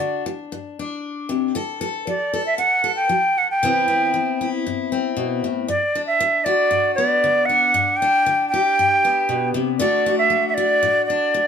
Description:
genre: highlife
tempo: 116 BPM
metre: 4/4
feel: straight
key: G major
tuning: A4 = 440 Hz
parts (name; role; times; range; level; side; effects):
- breathy bright concert flute; melody; 0.0-11.5 s; D5 to G5; -17 LUFS; right 1 dB; plate reverb
- picked steel-string acoustic guitar; accompaniment; 0.0-11.5 s; G2 to A4; -24 LUFS; left 4 dB; none
room: moderate studio reverb, RT60 0.6 s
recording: none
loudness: -17 LUFS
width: side -7 dB against mid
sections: 0.0-5.7 A section; 5.7-11.5 B section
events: none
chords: 0.0 Gmaj7(no3); 1.6 D; 3.6 Cmaj7; 5.7 Gmaj7; 9.8 D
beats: 0.00 0.52 1.03 | 1.55 2.07 2.59 3.10 | 3.62 4.14 4.65 5.17 | 5.69 6.20 6.72 7.23 | 7.75 8.26 8.77 9.29 | 9.80 10.31 10.83 11.34

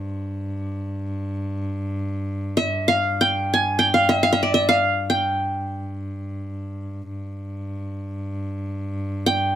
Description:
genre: Turkish makam ensemble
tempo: free time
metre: none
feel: none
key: G makam hicaz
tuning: A4 = 440 Hz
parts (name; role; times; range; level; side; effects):
- qanun; melody; 0.0-9.6 s; C5 to Ab5; -18 LUFS; equal; none
- clear cello; drone; 0.0-9.6 s; G2; -28 LUFS; equal; none
room: moderate small room reverb, RT60 0.5 s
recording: none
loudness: -21 LUFS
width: side -11 dB against mid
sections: 0.0-9.6 A section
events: none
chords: none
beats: free time

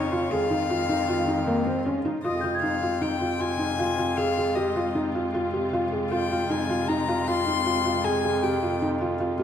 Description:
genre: contemporary instrumental, chamber music in an uneven meter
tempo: 155 BPM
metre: 5/4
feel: straight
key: F minor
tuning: A4 = 440 Hz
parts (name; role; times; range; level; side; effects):
- warm violin; melody; 0.0-8.8 s; Db5 to C6; -29 LUFS; left 6 dB; none
- muted studio string section; sustained chords; 0.0-9.4 s; C3 to F4; -33 LUFS; right 1 dB; none
- felt-muted upright piano; arpeggios; 0.0-9.4 s; Bb3 to Ab4; -26 LUFS; equal; none
- warm bass clarinet; bass; 0.0-9.4 s; F2; -29 LUFS; left 1 dB; none
- celesta; texture; 2.2-3.9, 8.1-8.6 s; Ab5 to Ab6; -33 LUFS; left 1 dB; none
room: moderate recital hall reverb, RT60 1.4 s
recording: none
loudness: -23 LUFS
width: side -9 dB against mid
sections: 0.0-2.2 A section; 2.2-9.4 B section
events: none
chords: 0.0 Db6/F; 2.2 Fm7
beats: | 0.31 0.70 1.08 1.47 1.86 | 2.24 2.63 3.02 3.40 3.79 | 4.18 4.56 4.95 5.34 5.72 | 6.11 6.50 6.89 7.27 7.66 | 8.05 8.44 8.82 9.21

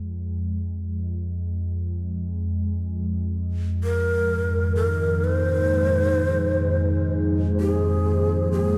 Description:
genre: dark ambient drone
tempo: 64 BPM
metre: 4/4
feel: straight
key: F minor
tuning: A4 = 441 Hz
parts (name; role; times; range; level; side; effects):
- deep rumbling drone; drone; 0.0-8.8 s; F2 to Ab3; -26 LUFS; equal; built-in reverb, phaser
- breathy mellow long shakuhachi; melody; 3.8-8.8 s; Ab4 to C5; -27 LUFS; equal; diffuse ambient delay
- dark analog pad; sustained chords; 4.5-8.8 s; Ab3 to C5; -28 LUFS; equal; chorus
room: wet cathedral reverb, RT60 4.9 s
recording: none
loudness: -24 LUFS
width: mono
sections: 0.0-8.8 A section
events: none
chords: 0.0 Fm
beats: | 0.08 1.02 1.96 2.89 | 3.83 4.77 5.71 6.64 | 7.58 8.52

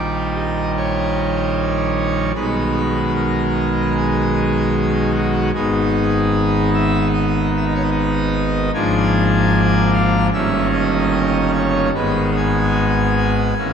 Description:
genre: classical, chorale-style piece for pipe organ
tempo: 75 BPM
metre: 4/4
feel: straight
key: G# minor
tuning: A4 = 439 Hz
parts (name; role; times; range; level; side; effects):
- pipe organ, full organ; solo; 0.0-13.7 s; G1 to G#5; -15 LUFS; equal; none
room: wet church reverb, RT60 3.5 s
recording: none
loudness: -15 LUFS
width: side -7 dB against mid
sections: 0.0-13.7 A section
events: none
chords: 0.0 D#7/A#; 2.4 G#m/B; 5.6 G#m; 8.7 A#7/G#; 10.3 D#7/G; 11.9 G#m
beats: 0.77 1.57 | 2.36 3.16 3.96 4.76 | 5.55 6.34 7.14 7.93 | 8.75 9.54 10.34 11.14 | 11.95 12.77 13.58

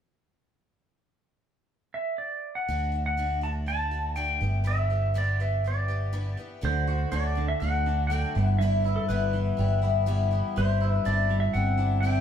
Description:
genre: rock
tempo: 122 BPM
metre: 4/4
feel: straight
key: D mixolydian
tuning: A4 = 440 Hz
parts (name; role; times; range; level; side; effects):
- clean lap steel guitar; melody; 1.9-12.2 s; A4 to A5; -30 LUFS; right 1 dB; none
- picked twelve-string acoustic guitar; accompaniment; 2.7-12.2 s; G2 to G4; -33 LUFS; left 8 dB; none
- fingered electric bass; bass; 2.7-12.2 s; G1 to D2; -26 LUFS; equal; none
- clean electric guitar; riff; 6.6-12.2 s; G2 to F#4; -30 LUFS; right 1 dB; none
room: moderate stone room reverb, RT60 1.3 s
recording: band playing live in one room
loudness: -24 LUFS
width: side -9 dB against mid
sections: 0.7-2.7 A section; 2.7-6.6 B section; 6.6-12.2 C section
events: none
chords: 0.7 N.C.; 2.7 D; 4.4 G6; 6.6 D; 8.4 G6; 10.6 Cadd9/G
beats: | 0.71 1.21 1.70 2.20 | 2.69 3.19 3.68 4.17 | 4.67 5.16 5.65 6.14 | 6.64 7.13 7.62 8.11 | 8.61 9.10 9.59 10.08 | 10.57 11.06 11.55 12.04

